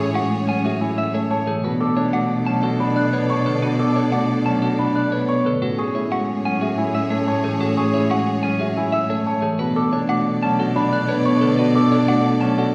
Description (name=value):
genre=classical, minimalist pattern music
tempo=181 BPM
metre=6/4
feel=straight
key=unclear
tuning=A4 = 440 Hz
part: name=clean electric guitar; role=melody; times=0.0-12.7 s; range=G#4 to A5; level=-30 LUFS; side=equal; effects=none
part: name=warm French horn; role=second line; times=0.0-12.7 s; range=C#4 to D4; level=-28 LUFS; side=equal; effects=none
part: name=clear symphonic violin section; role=sustained chords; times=0.0-12.7 s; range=G#4 to D5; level=-34 LUFS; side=equal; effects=none
part: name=celesta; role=arpeggios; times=0.0-12.7 s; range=E5 to F#6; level=-30 LUFS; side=equal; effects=none
part: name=clear concert grand piano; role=arpeggios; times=0.0-12.7 s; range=C#4 to C#5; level=-29 LUFS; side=equal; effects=none
part: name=rich cello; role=bass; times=0.0-12.7 s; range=A2 to B2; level=-27 LUFS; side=equal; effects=none
part: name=marimba with medium mallets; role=accompaniment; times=0.1-12.6 s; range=D3 to B3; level=-25 LUFS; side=equal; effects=none
room=wet recital hall reverb, RT60 1.8 s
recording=heard from further back in the room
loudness=-20 LUFS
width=mono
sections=0.0-12.7 A section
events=none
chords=0.0 Amaj7; 1.6 Bm7; 5.6 Amaj7; 9.6 Bm7